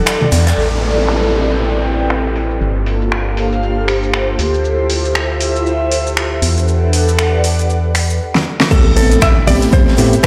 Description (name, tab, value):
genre	deep house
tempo	118 BPM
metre	4/4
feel	swing 58% on 16ths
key	A minor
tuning	A4 = 445 Hz
part	organ-like FM bass	bass	0.0-10.2 s	G1 to A2	-19 LUFS	equal	tube saturation, sidechain pumping
part	airy breathy pad	texture	0.0-10.3 s	G4 to G5	-22 LUFS	equal	chorus, phaser, sidechain pumping
part	deep house drum kit	drums	0.1-10.3 s	crash cymbal, finger snaps, hi-hat, shaker, snare drum	-21 LUFS	equal	overdrive, low-pass filter on hats, studio reverb, low-pass filter on snare, low-pass filter on perc, low-pass filter on cymbals
part	gated 80s drum kit	drums	0.1-0.6, 8.7-10.3 s	hi-hat, shaker, snare drum	-26 LUFS	equal	sidechain pumping on hats, high-pass filter on hats, studio reverb, high-pass filter on snare, sidechain pumping on perc, high-pass filter on perc, high-pass filter on room
part	airy breathy pad	sustained chords	0.8-10.3 s	A3 to B5	-24 LUFS	equal	chorus, phaser, sidechain pumping
part	downlifter and impact	sound effects	0.6-4.6, 8.7-10.3 s	none	-24 LUFS	equal	none
part	archtop guitar, miked and amplified	melody	8.7-10.3 s	A4 to E5	-20 LUFS	equal	digital delay
part	bell-like tine electric piano	stabs	8.7-10.1 s	A3 to A4	-19 LUFS	equal	sidechain pumping, digital delay
part	electronic kick drum	drums	8.7-10.3 s	none	-14 LUFS	equal	overdrive, studio reverb
room	moderate plate reverb, RT60 1.4 s, small room ambience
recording	played on a big sound system in a bare room, stone room reverb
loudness	-14 LUFS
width	mono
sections	0.6-8.7 A section; 8.7-10.3 B section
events	break 0.0-0.6; filter sweep on drum 0.6-8.7; drum fill 8.3-8.7; drop 8.7-10.3; impact 8.7-10.3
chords	0.0 E7sus2; 0.6 Am9; 2.6 Gm9; 4.4 Dm9; 6.4 Em9; 8.7 Am9